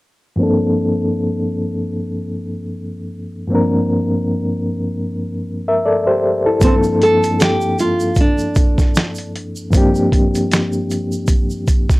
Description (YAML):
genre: lo-fi hip hop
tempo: 77 BPM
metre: 4/4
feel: swing 56% on 16ths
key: G minor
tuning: A4 = 439 Hz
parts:
  - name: overdriven reed electric piano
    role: accompaniment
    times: 0.4-12.0 s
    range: G2 to E5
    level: -17 LUFS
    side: left 1 dB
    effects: fast tremolo, low-pass filter
  - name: nylon-string guitar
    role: melody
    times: 6.6-9.3 s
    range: C4 to A4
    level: -17 LUFS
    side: right 1 dB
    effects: low-pass filter
  - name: dusty soul sampler-style drum kit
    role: drums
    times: 6.6-12.0 s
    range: finger snaps, hi-hat, kick drum, snare drum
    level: -14 LUFS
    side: equal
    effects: none
  - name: tube shaker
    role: percussion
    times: 6.6-12.0 s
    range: none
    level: -35 LUFS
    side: right 4 dB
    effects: none
room: light reverb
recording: dry, gritty hardware recording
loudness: -14 LUFS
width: side -20 dB against mid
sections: 0.4-6.6 A section; 6.6-12.0 B section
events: filter sweep on reed electric piano 0.4-6.6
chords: 0.4 Gm11